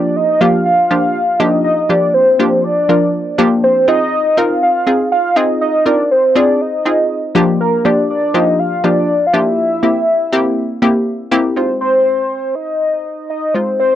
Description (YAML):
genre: pop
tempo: 121 BPM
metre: 4/4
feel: straight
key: F dorian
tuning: A4 = 440 Hz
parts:
  - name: warm velvety synth lead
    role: melody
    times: 0.0-14.0 s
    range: Bb4 to F5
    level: -13 LUFS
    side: equal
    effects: chorus, tremolo
  - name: analog pluck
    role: accompaniment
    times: 0.0-14.0 s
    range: F3 to Bb4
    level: -15 LUFS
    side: equal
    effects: chorus
room: moderate booth ambience, RT60 0.3 s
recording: worn, warbling old tape, cassette tape, warbly pitch drift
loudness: -11 LUFS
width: side -11 dB against mid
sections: 0.0-11.6 A section; 11.6-14.0 B section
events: drop 0.0-11.6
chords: 0.0 Gm7/F; 3.6 Fm7; 7.4 Gm7/F; 9.6 C7; 11.6 Fm7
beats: 0.16 0.66 1.15 | 1.65 2.15 2.64 3.14 | 3.63 4.13 4.62 5.12 | 5.62 6.11 6.61 7.10 | 7.60 8.10 8.59 9.09 | 9.58 10.08 10.57 11.07 | 11.57 12.06 12.56 13.05 | 13.55